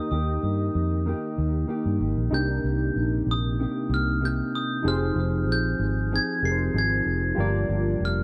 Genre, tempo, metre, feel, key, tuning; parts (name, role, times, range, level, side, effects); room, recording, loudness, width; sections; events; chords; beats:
indie pop, bedroom pop; 95 BPM; 4/4; straight; C minor; A4 = 440 Hz
glockenspiel with hard plastic mallets; melody; 0.0-8.2 s; Eb6 to C7; -33 LUFS; equal; lush chorus, tape echo
mellow electric guitar; accompaniment; 0.0-8.2 s; G2 to Ab4; -31 LUFS; equal; subtle chorus, vibrato effect
warbly lo-fi synth keys; accompaniment; 0.0-8.2 s; D4 to Eb5; -35 LUFS; equal; chorus
vintage muted fingered electric bass; bass; 0.1-8.2 s; F1 to G2; -28 LUFS; equal
light reverb, digital ambience; -25 LUFS; mono
0.0-8.2 A section
0.0 Eb; 2.3 Cm7; 4.9 Fm7; 7.4 Gm7
0.43 1.06 1.70 | 2.33 2.96 3.59 4.22 | 4.85 5.49 6.12 6.75 | 7.38 8.01